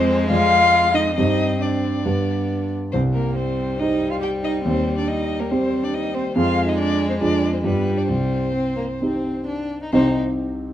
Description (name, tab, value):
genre	quick classical-period movement for piano quartet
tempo	128-144 BPM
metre	4/4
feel	rubato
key	C minor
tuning	A4 = 440 Hz
part	warm violin	melody	0.0-10.2 s	Bb4 to G5	-23 LUFS	left 4 dB	none
part	rich cello	second line	0.0-10.2 s	Bb3 to G4	-25 LUFS	right 6 dB	none
part	warm violin	second line	0.0-10.2 s	G3 to Eb4	-27 LUFS	left 2 dB	none
part	dark grand piano	accompaniment	0.0-10.7 s	C2 to Eb5	-22 LUFS	equal	none
room	moderate stone room reverb, RT60 1.3 s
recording	dark, warm production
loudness	-18 LUFS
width	side -11 dB against mid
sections	0.0-9.9 A section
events	none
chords	0.3 Ddim/F; 1.2 Gsus4; 2.1 G; 2.9 Cm; 4.7 Cm/Eb; 6.4 Fm; 7.2 Ddim/F; 7.6 G7; 8.1 Cm